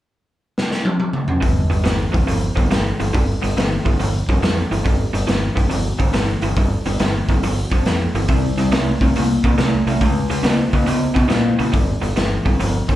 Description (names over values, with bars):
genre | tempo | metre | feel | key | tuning
blues rock power trio and southern rock | 140 BPM | 4/4 | swing 67% on 8ths | G minor | A4 = 441 Hz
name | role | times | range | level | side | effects
raw garage drum kit | drums | 0.6-13.0 s | hi-hat, kick drum, snare drum, toms | -19 LUFS | equal | none
raw garage guitar | riff | 1.4-13.0 s | G2 to B3 | -20 LUFS | equal | overdrive, slapback echo
modern bright fingered electric bass | bass | 1.4-13.0 s | G1 to Bb2 | -22 LUFS | equal | none
room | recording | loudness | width
light reverb | live gig heard through the venue's PA, club reverb | -16 LUFS | side -14 dB against mid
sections
0.0-1.4 A section; 1.4-13.0 B section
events
drum fill 0.6-1.4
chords
0.0 N.C.; 1.4 G5; 8.3 C5; 10.0 C#5; 11.7 G5